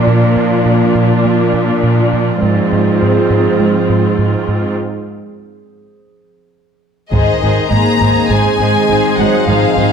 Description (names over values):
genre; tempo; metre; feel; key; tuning
cinematic, hybrid orchestral and electronic film score; 102 BPM; 4/4; straight; unclear; A4 = 441 Hz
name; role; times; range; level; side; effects
warm symphonic viola section; accompaniment; 0.0-9.9 s; Ab3 to F4; -19 LUFS; left 2 dB; none
warbly tape-like pad; sustained chords; 0.0-9.9 s; Eb3 to Eb5; -16 LUFS; right 2 dB; chorus, built-in reverb
rich symphonic cello section; bass; 0.0-9.9 s; Ab2 to Bb2; -17 LUFS; right 2 dB; none
round analog bass; riff; 0.1-9.9 s; Ab2 to Bb3; -17 LUFS; right 1 dB; none
rich studio violin section; melody; 7.1-9.9 s; Eb5 to Bb5; -17 LUFS; left 3 dB; none
warm symphonic violin section; second line; 7.1-9.9 s; Ab4 to C5; -18 LUFS; left 3 dB; none
warm French horn section; sustained chords; 7.1-9.9 s; Eb3 to Bb3; -19 LUFS; left 6 dB; none
warm symphonic double bass section; bass; 7.1-9.9 s; Ab1; -21 LUFS; right 2 dB; none
taiko ensemble; drums; 7.1-8.3 s; none; -22 LUFS; left 1 dB; none
room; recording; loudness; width
moderate scoring stage reverb, RT60 1.6 s; none; -10 LUFS; side -7 dB against mid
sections
0.0-7.1 A section; 7.1-9.9 B section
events
build-up 0.0-7.1; break 4.8-7.1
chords
0.0 Bb; 2.4 Fm/Ab; 7.1 Ab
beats
| 0.07 0.66 1.25 1.83 | 2.42 3.01 3.60 4.19 | 4.78 5.36 5.95 6.54 | 7.13 7.72 8.30 8.89 | 9.48